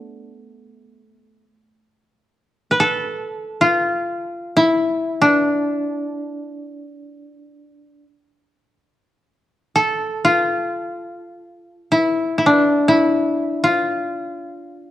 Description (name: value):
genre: japanese traditional, Japanese chamber music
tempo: free time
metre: none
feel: none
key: D kumoi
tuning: A4 = 436 Hz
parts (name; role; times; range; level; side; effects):
- koto; solo; 0.0-14.9 s; A3 to B4; -17 LUFS; left 1 dB; none
room: light reverb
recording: worn, warbling old tape, cassette tape, warbly pitch drift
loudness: -16 LUFS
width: side -13 dB against mid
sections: 0.0-8.8 A section; 8.8-14.9 A section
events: none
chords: none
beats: free time